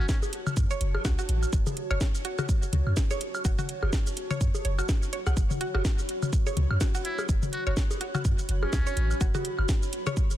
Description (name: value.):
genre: minimal techno.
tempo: 125 BPM.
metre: 4/4.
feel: swing 57% on 16ths.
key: F# minor.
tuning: A4 = 441 Hz.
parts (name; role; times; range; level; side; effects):
trumpet with metal mute; melody; 0.0-0.2, 7.0-9.3 s; C#4 to F#4; -38 LUFS; equal; ping-pong delay.
punchy sub bass; bass; 0.0-9.6 s; F#1 to F#2; -27 LUFS; equal; sidechain pumping.
granular cloud pad; texture; 0.0-10.4 s; F#4 to B5; -37 LUFS; equal; built-in reverb, sidechain pumping.
electronic kick drum; drums; 0.1-10.3 s; none; -26 LUFS; equal; none.
house drum kit; drums; 0.1-10.4 s; hi-hat, shaker, snare drum; -36 LUFS; right 1 dB; none.
electronic bongos, toms and woodblock; percussion; 0.2-10.1 s; none; -33 LUFS; left 3 dB; ping-pong delay.
mallet-like synth pluck; riff; 0.7-10.1 s; F#4 to F#5; -37 LUFS; right 1 dB; chorus, sidechain pumping, tape echo.
room: little or no reverb.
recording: dense, heavily limited modern master.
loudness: -25 LUFS.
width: side -13 dB against mid.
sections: 0.0-10.4 A section.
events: none.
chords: 0.0 F#m.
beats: 0.09 0.57 1.05 | 1.53 2.01 2.49 2.97 | 3.45 3.93 4.41 4.89 | 5.37 5.85 6.33 6.81 | 7.29 7.77 8.25 8.73 | 9.21 9.69 10.17.